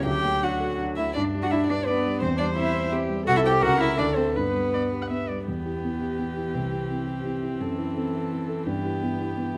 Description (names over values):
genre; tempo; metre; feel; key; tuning
quick classical-period movement for piano quartet; 169 BPM; 3/4; straight; G major, E minor from 5.5 s; A4 = 442 Hz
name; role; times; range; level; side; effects
dark violin; melody; 0.0-9.6 s; G4 to G5; -32 LUFS; equal; none
dark concert grand piano; accompaniment; 0.0-9.6 s; C2 to C5; -30 LUFS; equal; none
warm viola; accompaniment; 0.0-9.6 s; F#3 to F#5; -33 LUFS; equal; none
rich cello; second line; 0.1-9.6 s; E3 to G4; -32 LUFS; equal; none
room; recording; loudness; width
moderate recital hall reverb, RT60 1.5 s; close, detailed microphones; -26 LUFS; mono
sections
0.0-5.5 A section; 5.5-9.6 B section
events
none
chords
0.1 D; 1.2 G; 2.2 C/E; 3.3 C; 3.6 F#7/C#; 4.0 D5; 4.3 G; 5.5 Em; 6.5 C; 7.6 F#m7b5; 8.7 Em/G